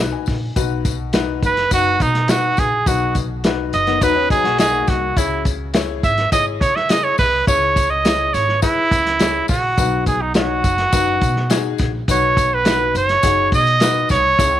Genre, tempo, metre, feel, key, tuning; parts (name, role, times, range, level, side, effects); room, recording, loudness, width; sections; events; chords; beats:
uptempo 1960s-style soul; 104 BPM; 4/4; straight; B major; A4 = 439 Hz
clear upright piano; accompaniment; 0.0-14.6 s; B2 to G#5; -24 LUFS; left 13 dB
upright bass; bass; 0.0-14.6 s; F#1 to C#3; -24 LUFS; equal
vintage drum kit; drums; 0.3-14.5 s; hi-hat, kick drum, snare drum; -20 LUFS; equal
tambourine; percussion; 0.3-14.5 s; -30 LUFS; left 12 dB
clear trumpet; melody; 1.5-14.6 s; D#4 to E5; -16 LUFS; right 3 dB
electric guitar through a small old amp; riff; 3.9-5.1 s; D#3 to F#4; -23 LUFS; left 14 dB; spring reverb
light reverb; 1960s-style stereo; -14 LUFS; side -12 dB against mid
0.6-14.6 A section
upright piano fill 0.0-0.6; trumpet solo 0.6-14.6
0.0 B; 5.2 C#m; 9.8 B
| 0.56 1.14 1.72 2.29 | 2.87 3.44 4.02 4.59 | 5.17 5.75 6.32 6.90 | 7.47 8.05 8.63 9.20 | 9.78 10.36 10.93 11.51 | 12.09 12.66 13.24 13.81 | 14.39